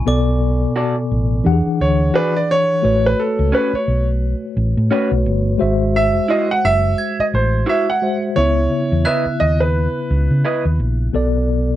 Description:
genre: soul.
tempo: 87 BPM.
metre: 4/4.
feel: swing 58% on 16ths.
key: C# minor.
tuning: A4 = 441 Hz.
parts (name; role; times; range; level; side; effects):
mellow tine electric piano; accompaniment; 0.0-11.8 s; B2 to F#5; -20 LUFS; left 2 dB; medium stereo tremolo.
glockenspiel with brass mallets; texture; 0.0-1.8, 7.0-11.4 s; G#5 to G#6; -31 LUFS; right 1 dB; none.
hollow-body short-scale fingered electric bass; bass; 0.1-11.7 s; F#1 to C#3; -17 LUFS; equal; none.
electric guitar through a small old amp; riff; 0.8-10.6 s; C#4 to D#5; -20 LUFS; right 1 dB; lush chorus.
warm concert grand piano; melody; 1.8-10.7 s; A4 to F#5; -18 LUFS; right 2 dB; none.
room: little or no reverb.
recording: dry, close 1970s-style studio recording.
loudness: -15 LUFS.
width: side -13 dB against mid.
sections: 0.0-8.4 A section; 8.4-11.8 B section.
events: grand piano solo 0.0-8.4.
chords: 0.1 Bm7; 1.5 E9; 2.8 A69; 5.6 G#7b13; 8.4 C#m9; 11.1 Bm7.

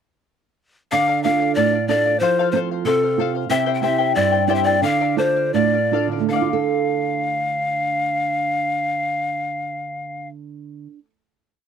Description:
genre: andean folk, Andean ensemble.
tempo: 75-93 BPM.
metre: 2/4.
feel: straight.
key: D minor.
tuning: A4 = 440 Hz.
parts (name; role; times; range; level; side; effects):
breathy bright large pan pipes; melody; 0.9-10.3 s; A4 to G5; -20 LUFS; left 2 dB; none.
charango; accompaniment; 0.9-11.0 s; E4 to G5; -25 LUFS; left 17 dB; none.
flamenco guitar; accompaniment; 0.9-11.1 s; G2 to A4; -23 LUFS; right 10 dB; none.
room: light reverb.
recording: dry, close 1970s-style studio recording.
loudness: -17 LUFS.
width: side -7 dB against mid.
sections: 0.9-6.3 A section; 6.3-9.5 final chord.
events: slowing down 3.5-6.3.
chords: 0.9 Dm; 2.2 F; 3.5 C; 4.8 Dm.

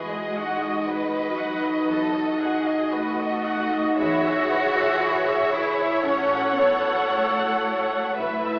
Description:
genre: classical, slow romantic movement for symphony orchestra.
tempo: 58 BPM.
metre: 4/4.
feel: rubato.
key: unclear.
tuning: A4 = 442 Hz.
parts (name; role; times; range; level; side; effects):
warm studio violin section; melody; 0.0-8.6 s; D#5 to F#5; -32 LUFS; equal; none.
rich studio violin section; second line; 0.0-8.6 s; F#4 to C#5; -29 LUFS; equal; none.
rich studio viola section; accompaniment; 0.0-8.6 s; E4 to F#5; -29 LUFS; equal; none.
concert harp; arpeggios; 0.0-8.6 s; A2 to A4; -31 LUFS; equal; none.
rich studio cello section; bass; 0.0-8.6 s; F#3 to F#4; -31 LUFS; equal; none.
warm studio double bass section; bass; 0.0-8.6 s; A1 to E2; -43 LUFS; equal; none.
room: wet recital hall reverb, RT60 1.8 s.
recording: recorded in a church or concert hall, AM radio sound.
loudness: -23 LUFS.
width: mono.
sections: 0.0-8.6 A section.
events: none.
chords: 0.0 B7/E; 4.0 E; 6.1 F#m/A.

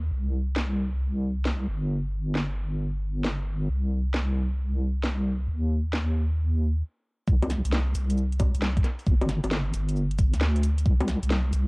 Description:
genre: UK garage, two-step garage.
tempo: 134 BPM.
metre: 4/4.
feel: swing 67% on 16ths.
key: unclear.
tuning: A4 = 441 Hz.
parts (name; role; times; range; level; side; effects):
deep soft wobble bass; bass; 0.0-11.7 s; G1 to Eb2; -25 LUFS; equal; chorus.
garage drum kit; drums; 0.6-11.7 s; bongos, cabasa, hi-hat, snare drum; -31 LUFS; equal; cassette tape.
electronic kick drum; drums; 7.3-11.0 s; none; -22 LUFS; equal; cassette tape.
room: little or no reverb.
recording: home recording on cassette.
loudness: -24 LUFS.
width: side -30 dB against mid.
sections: 0.0-7.3 A section; 7.3-11.7 B section.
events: stop 6.8-7.3; drop 7.3-11.7.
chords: none.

